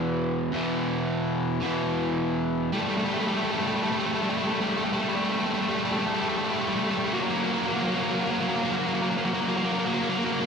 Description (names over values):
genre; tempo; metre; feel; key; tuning
rock; 54 BPM (dotted quarters); 6/8; straight; unclear; A4 = 440 Hz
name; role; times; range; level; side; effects
crunchy overdriven guitar; solo; 0.0-10.5 s; E2 to B3; -24 LUFS; equal; none
room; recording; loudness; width
wet lush hall reverb, RT60 2.6 s; big arena sound; -24 LUFS; side -6 dB against mid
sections
0.0-2.7 A section; 2.7-10.5 B section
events
build-up 2.7-10.5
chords
0.0 E5; 2.7 Gsus2; 7.1 F#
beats
| 0.53 1.63 | 2.73 3.83 | 4.93 6.03 | 7.13 8.23 | 9.34 10.44